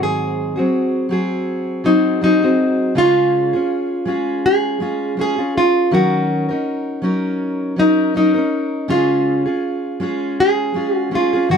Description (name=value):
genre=acoustic pop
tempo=81 BPM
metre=4/4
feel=swing 55% on 16ths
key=Db major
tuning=A4 = 442 Hz
part: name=nylon-string guitar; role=melody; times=0.0-11.6 s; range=Eb4 to Ab4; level=-17 LUFS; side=equal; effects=none
part: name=fingerpicked steel-string acoustic guitar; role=accompaniment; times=0.0-11.6 s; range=Ab2 to Bb4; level=-19 LUFS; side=equal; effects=none
room=moderate studio reverb, RT60 0.5 s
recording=none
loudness=-15 LUFS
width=side -6 dB against mid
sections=0.0-11.6 A section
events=none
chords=0.0 Ab7; 3.0 Db; 5.9 Ebm7; 8.9 Db